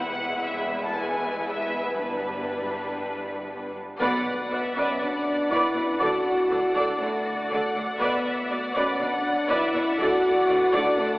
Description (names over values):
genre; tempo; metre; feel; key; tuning
cinematic, epic orchestral film score; 120 BPM; 4/4; straight; B minor from 4.0 s; A4 = 438 Hz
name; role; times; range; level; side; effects
clear symphonic violin section; melody; 0.0-11.2 s; F#4 to A5; -32 LUFS; left 1 dB; none
clear symphonic violin section; second line; 0.0-11.2 s; D4 to F#5; -31 LUFS; left 1 dB; none
warm symphonic viola section; accompaniment; 0.0-11.1 s; G3 to D5; -28 LUFS; right 1 dB; none
mellow French horn section; sustained chords; 0.0-11.2 s; A3 to F#4; -27 LUFS; equal; none
clear studio cello section; bass; 0.0-11.1 s; E2 to D3; -37 LUFS; equal; none
clear symphonic double bass section; bass; 0.0-11.1 s; E1 to D2; -42 LUFS; right 1 dB; none
taiko ensemble; drums; 4.0-5.0, 8.0-9.0 s; none; -54 LUFS; equal; none
impact; sound effects; 4.0-6.0 s; none; barely audible; none; none
room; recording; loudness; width
wet cathedral reverb, RT60 6.0 s; recorded in a church or concert hall, telephone sound; -22 LUFS; side -20 dB against mid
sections
0.0-4.0 A section; 4.0-11.2 B section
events
band accent 4.0-4.5; impact 4.0-6.0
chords
0.0 E; 2.0 G; 4.0 Bm; 6.0 D; 8.0 Bm; 10.0 D